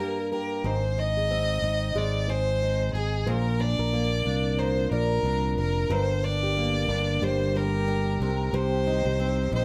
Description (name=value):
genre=acoustic pop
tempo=91 BPM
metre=4/4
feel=swing 60% on 16ths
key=unclear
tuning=A4 = 441 Hz
part: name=rich violin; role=melody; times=0.0-9.6 s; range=Ab4 to Eb5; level=-31 LUFS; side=equal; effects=none
part: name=picked steel-string acoustic guitar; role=accompaniment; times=0.0-9.6 s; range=G2 to Bb4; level=-33 LUFS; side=equal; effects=none
part: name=nylon-string guitar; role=arpeggios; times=0.0-9.5 s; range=G4 to D5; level=-38 LUFS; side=equal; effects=none
part: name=fingered electric bass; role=bass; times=0.6-9.6 s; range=F1 to C2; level=-29 LUFS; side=equal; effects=none
part: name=warm studio string section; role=sustained chords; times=5.9-9.6 s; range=D3 to G4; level=-43 LUFS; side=equal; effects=none
room=light reverb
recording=none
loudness=-26 LUFS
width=mono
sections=0.6-9.6 A section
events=none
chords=0.0 Gm; 0.6 Ab; 3.3 Bb; 5.9 Gm; 8.2 Cm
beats=| 0.65 1.30 1.96 2.62 | 3.27 3.93 4.59 5.25 | 5.91 6.56 7.22 7.88 | 8.54 9.20